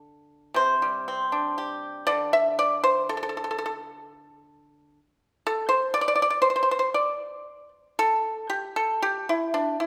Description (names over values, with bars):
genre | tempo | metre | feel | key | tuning
chinese traditional, Chinese solo plucked strings | 60 BPM | 2/4 | uneven beats, rubato | D shang mode | A4 = 440 Hz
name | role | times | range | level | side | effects
pipa | solo | 0.0-9.9 s | C3 to E5 | -25 LUFS | equal | none
room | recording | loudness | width
wet recital hall reverb, RT60 1.5 s | recorded in a church or concert hall | -25 LUFS | mono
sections
0.0-8.0 A section; 8.0-9.9 B section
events
none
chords
none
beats
| 0.06 1.07 | 2.08 3.08 | 4.04 4.99 | 5.97 6.98 | 7.99 9.03